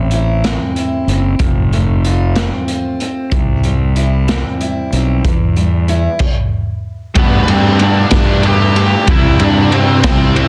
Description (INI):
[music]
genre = quiet-loud alternative rock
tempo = 62 BPM (dotted quarters)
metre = 6/8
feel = straight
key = unclear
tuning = A4 = 444 Hz
[part]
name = picked steel-string acoustic guitar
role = arpeggios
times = 0.0-6.2 s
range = A2 to F4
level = -22 LUFS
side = equal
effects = none
[part]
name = fuzz fingered electric bass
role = bass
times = 0.0-10.5 s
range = F1 to G2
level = -16 LUFS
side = equal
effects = overdrive
[part]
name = raw garage drum kit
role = drums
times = 0.1-10.5 s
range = crash cymbal, hi-hat, kick drum, ride cymbal, snare drum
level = -18 LUFS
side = equal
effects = none
[part]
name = thick fuzz guitar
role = riff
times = 7.1-10.5 s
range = C3 to G4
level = -22 LUFS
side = equal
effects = distortion
[part]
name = octave-fuzz lead guitar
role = melody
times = 7.2-10.5 s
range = B3 to G5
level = -19 LUFS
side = equal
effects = distortion
[part]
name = high-gain distorted guitar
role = riff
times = 7.2-10.5 s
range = C3 to A4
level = -20 LUFS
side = equal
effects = distortion
[sound]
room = light reverb, small room ambience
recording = dense, heavily limited modern master, cassette tape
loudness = -14 LUFS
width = mono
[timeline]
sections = 0.0-7.2 A section; 7.2-10.5 B section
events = stop 6.2-7.2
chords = 0.0 Am; 1.4 F; 3.3 C; 5.2 Em; 7.2 Gsus2; 9.1 Cadd9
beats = 0.43 | 1.39 2.35 | 3.32 4.28 | 5.25 6.21 | 7.17 8.13 | 9.09 10.04